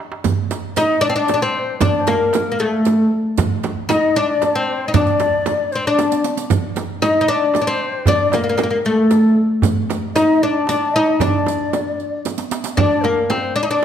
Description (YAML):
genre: Arabic maqam ensemble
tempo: 115 BPM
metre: 3/4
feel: straight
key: D maqam hijaz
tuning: A4 = 440 Hz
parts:
  - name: darbuka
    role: percussion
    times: 0.1-13.4 s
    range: none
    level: -23 LUFS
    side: right 4 dB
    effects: none
  - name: frame drum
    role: percussion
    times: 0.2-13.8 s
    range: none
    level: -24 LUFS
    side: right 6 dB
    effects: none
  - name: riq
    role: percussion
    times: 0.2-12.8 s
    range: none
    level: -30 LUFS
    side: right 8 dB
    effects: none
  - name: oud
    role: melody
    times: 0.8-13.8 s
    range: A3 to Eb4+25c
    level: -17 LUFS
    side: left 2 dB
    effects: none
  - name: mellow ney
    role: second line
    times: 0.8-13.8 s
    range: A4 to Eb5+31c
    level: -21 LUFS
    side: left 2 dB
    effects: none
room: moderate recital hall reverb, RT60 1.5 s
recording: none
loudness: -15 LUFS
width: side -9 dB against mid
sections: 0.2-12.8 A section; 12.8-13.8 B section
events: drum fill 0.0, 6.0-6.5, 12.3-12.8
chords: none